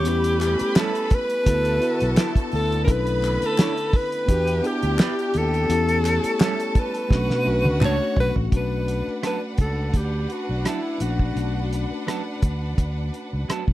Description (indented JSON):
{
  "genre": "lush 1970s-style soul",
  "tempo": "85 BPM",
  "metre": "4/4",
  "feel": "swing 54% on 16ths",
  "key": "B minor",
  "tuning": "A4 = 442 Hz",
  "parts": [
    { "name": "clear alto saxophone", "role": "melody", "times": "0.0-11.7 s", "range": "E4 to C#5", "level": "-25 LUFS", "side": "equal", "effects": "slapback echo" },
    { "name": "bright studio violin section", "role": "second line", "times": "0.0-13.7 s", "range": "D4 to B5", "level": "-32 LUFS", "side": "left 1 dB", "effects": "none" },
    { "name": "mellow tine electric piano", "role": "accompaniment", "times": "0.0-13.7 s", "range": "A3 to B4", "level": "-29 LUFS", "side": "moving between left 9 dB and right 4 dB", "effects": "auto-pan" },
    { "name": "muted studio string section", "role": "sustained chords", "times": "0.0-8.5 s", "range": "D3 to G4", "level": "-34 LUFS", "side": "right 2 dB", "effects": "none" },
    { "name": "fingered electric bass", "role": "bass", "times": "0.0-13.7 s", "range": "A1 to B2", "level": "-24 LUFS", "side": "equal", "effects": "none" },
    { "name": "cloth-damped thuddy drum kit", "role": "drums", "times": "0.1-13.7 s", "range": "hi-hat, kick drum, rim click, snare drum, toms", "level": "-20 LUFS", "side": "equal", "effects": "none" },
    { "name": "group handclap", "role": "percussion", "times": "0.4-8.0 s", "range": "none", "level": "-37 LUFS", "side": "left 5 dB", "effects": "none" },
    { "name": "semi-hollow electric guitar", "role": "riff", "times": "0.8-13.6 s", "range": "F#3 to C#5", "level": "-28 LUFS", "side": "right 7 dB", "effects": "none" }
  ],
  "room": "little or no reverb",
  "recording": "dry, close 1970s-style studio recording",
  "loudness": "-20 LUFS",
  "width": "side -15 dB against mid",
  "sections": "0.0-8.5 A section; 8.5-13.7 B section",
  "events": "drum fill 7.1-8.5",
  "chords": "0.1 A7; 1.5 D69; 2.9 Bm11; 4.3 Em7; 5.7 A7; 7.1 Bm7"
}